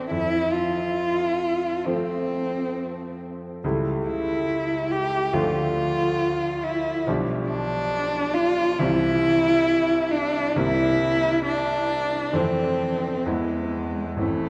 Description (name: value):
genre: classical, romantic duo for cello and grand piano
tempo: 61-71 BPM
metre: 4/4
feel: rubato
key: unclear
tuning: A4 = 440 Hz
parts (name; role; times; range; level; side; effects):
- rich cello; melody; 0.0-14.5 s; G#3 to G4; -25 LUFS; equal; none
- bright concert grand piano; accompaniment; 0.0-14.5 s; A1 to E4; -29 LUFS; equal; none
room: wet church reverb, RT60 3.8 s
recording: recorded in a church or concert hall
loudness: -24 LUFS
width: mono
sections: 0.0-14.5 A section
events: none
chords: 0.1 F; 3.6 A7/C#; 5.3 Dm; 7.1 G7/B; 8.8 C; 10.6 C7; 12.3 Fmaj7; 13.3 E